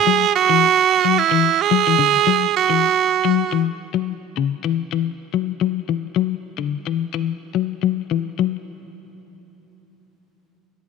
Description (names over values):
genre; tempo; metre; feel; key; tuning
afrobeat; 108 BPM; 4/4; swing 55% on 16ths; unclear; A4 = 438 Hz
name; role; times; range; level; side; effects
raspy tenor saxophone; melody; 0.0-3.6 s; E4 to G#4; -15 LUFS; right 10 dB; none
electric guitar at the edge of break-up; arpeggios; 0.1-8.6 s; C#3 to F#3; -21 LUFS; left 11 dB; harmonic tremolo
room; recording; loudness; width
moderate plate reverb, RT60 3.4 s; 1960s-style stereo with parts hard left and right; -17 LUFS; side -4 dB against mid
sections
0.0-3.9 A section; 3.9-8.4 B section; 8.4-10.6 C section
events
none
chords
0.0 F#7(no3); 1.7 Dadd9; 3.9 F#5; 6.2 Dadd9; 8.4 N.C.